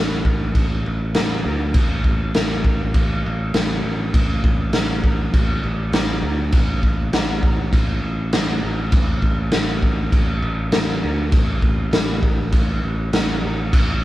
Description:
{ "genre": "garage rock duo or trio", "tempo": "100 BPM", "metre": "4/4", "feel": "straight", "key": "unclear", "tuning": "A4 = 440 Hz", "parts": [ { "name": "modern bright picked electric bass", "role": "bass", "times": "0.0-14.0 s", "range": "A1 to D2", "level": "-22 LUFS", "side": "equal", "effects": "overdrive" }, { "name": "raw garage drum kit", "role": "drums", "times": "0.2-13.9 s", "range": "crash cymbal, kick drum, snare drum", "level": "-18 LUFS", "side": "equal", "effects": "none" } ], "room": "light reverb", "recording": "band playing live in one room", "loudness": "-17 LUFS", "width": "side -16 dB against mid", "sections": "0.0-14.0 A section", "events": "none", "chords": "none", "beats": "| 0.55 1.15 1.75 2.34 | 2.94 3.54 4.14 4.74 | 5.34 5.94 6.54 7.14 | 7.74 8.33 8.93 9.53 | 10.13 10.73 11.33 11.93 | 12.53 13.13 13.73" }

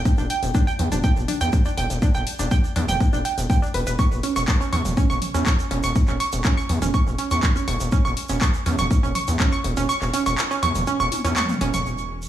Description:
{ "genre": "melodic techno", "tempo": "122 BPM", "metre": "4/4", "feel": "straight", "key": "unclear", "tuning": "A4 = 441 Hz", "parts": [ { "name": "gritty driven synth bass", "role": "bass", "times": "0.0-12.3 s", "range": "E1 to E2", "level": "-24 LUFS", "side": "equal", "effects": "sidechain pumping" }, { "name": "electronic kick drum", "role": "drums", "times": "0.1-9.5 s", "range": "none", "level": "-19 LUFS", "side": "equal", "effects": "overdrive, studio ambience" }, { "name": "house drum kit", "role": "drums", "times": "0.1-11.8 s", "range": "handclaps, hi-hat, toms", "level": "-28 LUFS", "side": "equal", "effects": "overdrive, sidechain pumping on hats, studio ambience, sidechain pumping on toms" }, { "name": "egg shaker", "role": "percussion", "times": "0.1-12.3 s", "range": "none", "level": "-36 LUFS", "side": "right 4 dB", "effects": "none" }, { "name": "analog pluck", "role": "arpeggios", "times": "0.2-11.8 s", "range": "C#4 to C#6", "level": "-24 LUFS", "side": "right 3 dB", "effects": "chorus, sidechain pumping, digital delay" } ], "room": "light reverb, digital ambience", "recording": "small room reverb", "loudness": "-19 LUFS", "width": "side -12 dB against mid", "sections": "0.0-11.9 A section", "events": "kick drops out 9.9-11.9; drum fill 11.1-11.9", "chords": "0.0 Em7; 4.0 C#m/E", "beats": "| 0.05 0.55 1.04 1.53 | 2.02 2.51 3.00 3.50 | 3.99 4.48 4.97 5.46 | 5.96 6.45 6.94 7.43 | 7.92 8.41 8.91 9.40 | 9.89 10.38 10.87 11.37 | 11.86" }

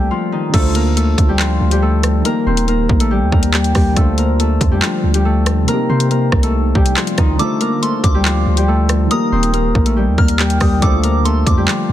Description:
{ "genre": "hip hop, drill", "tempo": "140 BPM", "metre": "4/4", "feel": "half-time", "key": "D phrygian", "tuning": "A4 = 441 Hz", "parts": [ { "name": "Celtic harp", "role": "melody", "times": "0.0-11.9 s", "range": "Eb3 to C5", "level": "-17 LUFS", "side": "left 2 dB", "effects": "low-pass filter, digital delay" }, { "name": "long sustained 808-style bass", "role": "bass", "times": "0.0-11.9 s", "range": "Eb1 to C3", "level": "-16 LUFS", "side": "right 1 dB", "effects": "none" }, { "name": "soft electric-piano-like synth keys", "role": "accompaniment", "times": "0.5-11.9 s", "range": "C3 to C5", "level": "-24 LUFS", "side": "right 3 dB", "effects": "chorus, phaser, low-pass filter" }, { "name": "drill drum kit", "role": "drums", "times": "0.5-11.8 s", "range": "crash cymbal, handclaps, hi-hat, kick drum, rim click", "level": "-16 LUFS", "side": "equal", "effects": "vintage 12-bit sampler grit" }, { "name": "soft synth bell", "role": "second line", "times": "7.4-11.9 s", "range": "C6 to F6", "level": "-23 LUFS", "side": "right 1 dB", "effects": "chorus, digital delay" } ], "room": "little or no reverb", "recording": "dense, heavily limited modern master", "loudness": "-12 LUFS", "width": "side -12 dB against mid", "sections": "0.5-11.9 A section", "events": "break 0.1-0.5; kick muted 7.4-7.8", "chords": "0.0 Cm; 0.5 Dm7; 2.3 Eb; 4.0 Dm7; 5.7 Cm; 7.4 Dm7; 9.1 Eb; 10.8 Dm7", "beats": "0.11 | 0.54 0.97 1.39 1.82 | 2.25 2.68 3.11 3.54 | 3.97 4.39 4.82 5.25 | 5.68 6.11 6.54 6.97 | 7.39 7.82 8.25 8.68 | 9.11 9.54 9.97 10.39 | 10.82 11.25 11.68" }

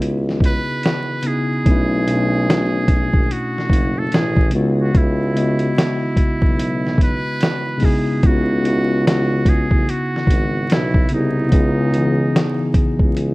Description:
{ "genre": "lo-fi hip hop", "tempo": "73 BPM", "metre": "4/4", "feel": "swing 62% on 16ths", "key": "C# minor", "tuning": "A4 = 439 Hz", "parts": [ { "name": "mellow tine electric piano", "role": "accompaniment", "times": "0.0-13.3 s", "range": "B2 to D#5", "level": "-20 LUFS", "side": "left 1 dB", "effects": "medium stereo tremolo, cassette tape, low-pass filter" }, { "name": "mellow tuba", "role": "bass", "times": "0.0-13.3 s", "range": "F#1 to C#2", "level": "-20 LUFS", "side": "equal", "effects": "none" }, { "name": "lo-fi sampler-style drum kit", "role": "drums", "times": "0.0-13.3 s", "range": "hi-hat, kick drum, snare drum", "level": "-17 LUFS", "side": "equal", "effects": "none" }, { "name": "trumpet with metal mute", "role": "melody", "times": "0.5-12.7 s", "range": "D#4 to B4", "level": "-25 LUFS", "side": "right 2 dB", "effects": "low-pass filter, tape echo" } ], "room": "little or no reverb", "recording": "echo-heavy mix, vinyl crackle", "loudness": "-15 LUFS", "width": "side -22 dB against mid", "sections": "0.0-8.2 A section; 8.2-13.3 A section", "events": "none", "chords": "0.0 C#m11; 1.7 Bm11; 4.5 C#m11", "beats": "0.01 0.84 | 1.66 2.48 3.30 4.12 | 4.95 5.77 6.59 7.41 | 8.23 9.05 9.88 10.70 | 11.52 12.34 13.16" }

